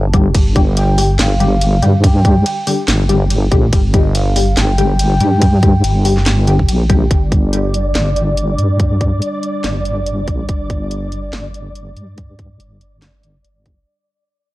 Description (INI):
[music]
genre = deep dubstep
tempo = 142 BPM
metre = 4/4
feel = swing 56% on 16ths, half-time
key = unclear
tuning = A4 = 440 Hz
[part]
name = deep soft wobble bass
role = bass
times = 0.0-13.9 s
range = G1 to G2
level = -14 LUFS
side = equal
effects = chorus
[part]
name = filtered dub chord stab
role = stabs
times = 0.1-7.0 s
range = D3 to G4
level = -20 LUFS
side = left 3 dB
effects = lush chorus, dub echo
[part]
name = electronic kick drum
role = drums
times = 0.1-13.8 s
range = none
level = -14 LUFS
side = equal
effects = none
[part]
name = garage drum kit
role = drums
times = 0.1-13.8 s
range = handclaps, hi-hat, ride cymbal, snare drum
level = -21 LUFS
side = equal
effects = none
[part]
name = breathy mellow long shakuhachi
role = melody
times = 0.8-6.7 s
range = Eb5 to A5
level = -22 LUFS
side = equal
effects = dub echo
[part]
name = dark analog pad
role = sustained chords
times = 7.7-13.8 s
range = G3 to D5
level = -26 LUFS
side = right 1 dB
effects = chorus
[part]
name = flickering grainy texture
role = texture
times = 7.3-13.9 s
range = D5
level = -24 LUFS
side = equal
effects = built-in reverb
[sound]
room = little or no reverb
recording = dry, gritty hardware recording, cassette tape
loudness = -11 LUFS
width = side -18 dB against mid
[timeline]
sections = 0.0-7.1 A section; 7.1-13.9 B section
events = drop 0.0-7.1; fade-out 7.1-13.9; filter sweep on wobble bass 7.1-13.9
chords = 0.0 G5